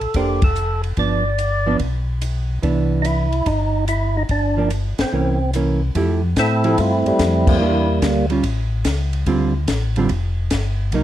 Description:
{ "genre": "soul jazz organ trio", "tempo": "145 BPM", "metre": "4/4", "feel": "swing 67% on 8ths", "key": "C major, F major from 5.9 s", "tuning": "A4 = 438 Hz", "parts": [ { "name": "percussive tonewheel organ", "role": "melody", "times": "0.0-8.3 s", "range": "G3 to D5", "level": "-20 LUFS", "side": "right 1 dB", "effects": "slow rotary speaker, overdrive" }, { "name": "mellow tonewheel organ", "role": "bass", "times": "0.0-11.0 s", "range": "F1 to A2", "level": "-20 LUFS", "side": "left 1 dB", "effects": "chorus vibrato, slow rotary speaker" }, { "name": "compact cocktail drum kit", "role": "drums", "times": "0.0-11.0 s", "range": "crash cymbal, hi-hat, kick drum, ride cymbal, snare drum", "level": "-23 LUFS", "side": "left 1 dB", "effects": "none" }, { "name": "archtop guitar, miked and amplified", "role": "accompaniment", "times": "0.2-11.0 s", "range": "D3 to C5", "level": "-21 LUFS", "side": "right 4 dB", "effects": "none" } ], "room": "little or no reverb", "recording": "dark, warm production", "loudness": "-17 LUFS", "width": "side -12 dB against mid", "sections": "0.0-5.9 A section; 5.9-11.0 B section", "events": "band accent 0.3, 4.9, 7.4", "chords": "0.0 Bbmaj9; 1.0 G7; 2.6 Cmaj9; 4.3 Gm7; 5.1 C7b9; 5.9 Fmaj9; 7.6 Em7b5; 8.4 A; 9.3 Dm7", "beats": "0.14 0.55 | 0.97 1.38 1.80 2.21 | 2.63 3.04 3.46 3.87 | 4.29 4.70 5.12 5.53 | 5.95 6.36 6.78 7.19 | 7.61 8.02 8.44 8.85 | 9.27 9.68 10.10 10.51 | 10.93" }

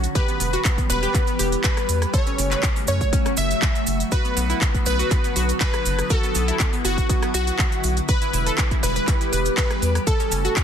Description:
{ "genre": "progressive house", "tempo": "121 BPM", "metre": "4/4", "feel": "straight", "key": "B minor", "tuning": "A4 = 440 Hz", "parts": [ { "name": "plucky unison lead", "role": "melody", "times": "0.0-10.6 s", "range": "F#4 to E5", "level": "-26 LUFS", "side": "equal", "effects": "phaser, sidechain pumping, digital delay" }, { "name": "soft round pluck", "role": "second line", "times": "0.0-10.6 s", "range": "F#4 to E5", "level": "-35 LUFS", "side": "left 1 dB", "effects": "none" }, { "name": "evolving wavetable pad", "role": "sustained chords", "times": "0.0-10.6 s", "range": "C#3 to G4", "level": "-28 LUFS", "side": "equal", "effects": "chorus, built-in reverb, phaser, vintage 12-bit sampler grit, sidechain pumping" }, { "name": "analog pluck", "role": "arpeggios", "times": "0.0-10.6 s", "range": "B3 to E5", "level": "-30 LUFS", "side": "left 1 dB", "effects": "chorus, vintage 12-bit sampler grit, sidechain pumping, ping-pong delay" }, { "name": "round analog bass", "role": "bass", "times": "0.0-10.5 s", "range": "E1 to F#2", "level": "-23 LUFS", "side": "equal", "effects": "sidechain pumping" }, { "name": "house drum kit", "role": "drums", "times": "0.0-10.6 s", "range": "handclaps, hi-hat, rim click", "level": "-27 LUFS", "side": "equal", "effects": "none" }, { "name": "maracas", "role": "percussion", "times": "0.0-10.6 s", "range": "none", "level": "-32 LUFS", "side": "right 7 dB", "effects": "none" }, { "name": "electronic kick drum", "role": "drums", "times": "0.2-10.6 s", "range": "none", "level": "-22 LUFS", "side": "equal", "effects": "none" } ], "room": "little or no reverb", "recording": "dense, heavily limited modern master", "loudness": "-18 LUFS", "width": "side -8 dB against mid", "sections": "0.0-10.6 A section", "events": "none", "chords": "0.2 Em; 2.1 F#m; 4.1 Bm; 8.1 Em; 10.1 F#m", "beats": "| 0.15 0.65 1.15 1.64 | 2.14 2.63 3.13 3.62 | 4.12 4.62 5.11 5.61 | 6.10 6.60 7.09 7.59 | 8.09 8.58 9.08 9.57 | 10.07 10.57" }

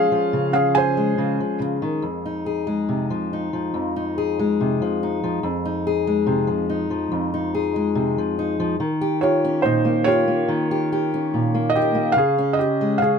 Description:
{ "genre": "acoustic folk-pop ballad", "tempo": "71 BPM", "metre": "4/4", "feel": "straight", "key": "F minor", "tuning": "A4 = 441 Hz", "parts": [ { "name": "felt-muted upright piano", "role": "melody", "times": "0.0-1.6, 9.2-13.2 s", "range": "Eb4 to Ab5", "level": "-20 LUFS", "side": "right 2 dB", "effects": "none" }, { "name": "fingerpicked steel-string acoustic guitar", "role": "accompaniment", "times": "0.0-13.2 s", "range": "F2 to Ab4", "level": "-21 LUFS", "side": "left 2 dB", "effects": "none" } ], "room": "light reverb", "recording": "close, detailed microphones", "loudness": "-19 LUFS", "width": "side -6 dB against mid", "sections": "0.0-13.2 A section", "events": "none", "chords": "0.0 Dbmaj7; 2.0 Fm7; 8.8 Eb7; 12.2 Dbadd9(#11)", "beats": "0.32 1.18 | 2.04 2.88 3.73 4.58 | 5.43 6.27 7.11 7.95 | 8.79 9.64 10.48 11.32 | 12.16 13.01" }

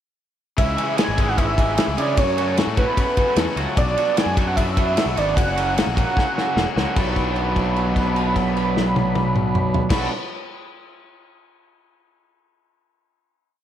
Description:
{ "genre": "indie rock", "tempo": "151 BPM", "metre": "4/4", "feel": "straight", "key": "B dorian", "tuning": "A4 = 440 Hz", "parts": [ { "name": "octave-doubled lead", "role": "melody", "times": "0.6-10.1 s", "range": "B4 to B5", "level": "-24 LUFS", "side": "right 2 dB", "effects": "chorus" }, { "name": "overdriven electric guitar", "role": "riff", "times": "0.6-10.1 s", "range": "F#2 to F#4", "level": "-27 LUFS", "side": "left 7 dB", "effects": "slapback echo" }, { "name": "fuzz picked electric bass", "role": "bass", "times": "0.6-10.1 s", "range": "E1 to C#3", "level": "-25 LUFS", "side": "equal", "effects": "overdrive" }, { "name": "loose indie drum kit", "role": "drums", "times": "0.6-10.0 s", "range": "crash cymbal, kick drum, ride cymbal, snare drum, toms", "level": "-22 LUFS", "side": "left 1 dB", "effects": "none" }, { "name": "raw garage guitar", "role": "riff", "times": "0.8-10.1 s", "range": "E3 to G#4", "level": "-27 LUFS", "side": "right 6 dB", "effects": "overdrive, analog chorus, slapback echo" } ], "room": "light reverb, small room ambience", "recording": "none", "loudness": "-18 LUFS", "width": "side -10 dB against mid", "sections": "0.6-7.0 pre-chorus; 7.0-10.1 final chord", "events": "drum fill 6.2-7.0; held note 7.0-9.9", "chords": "0.6 C#m; 2.2 F#m; 3.8 Bm; 5.4 F#; 7.0 Bm", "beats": "| 0.57 0.97 1.38 1.78 | 2.18 2.58 2.98 3.38 | 3.77 4.17 4.57 4.97 | 5.37 5.77 6.17 6.57 | 6.96 7.36 7.76 8.15 | 8.55 8.95 9.34 9.74" }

